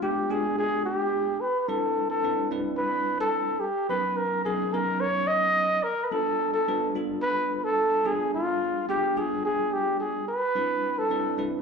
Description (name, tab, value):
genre	jazz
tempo	108 BPM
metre	4/4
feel	straight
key	G mixolydian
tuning	A4 = 443 Hz
part	dark trumpet	melody	0.0-11.6 s	F4 to D#5	-25 LUFS	equal	plate reverb, slapback echo
part	bell-like tine electric piano	accompaniment	0.0-11.6 s	F#3 to B4	-31 LUFS	equal	medium stereo tremolo, plate reverb, slapback echo
room	moderate club reverb, RT60 0.7 s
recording	live gig heard through the venue's PA, club reverb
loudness	-24 LUFS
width	side -5 dB against mid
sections	0.0-11.6 A section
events	none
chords	0.0 G7b9; 1.7 Cmaj9; 3.9 Bmaj9; 6.1 G9; 8.1 G7b9; 10.5 Cmaj9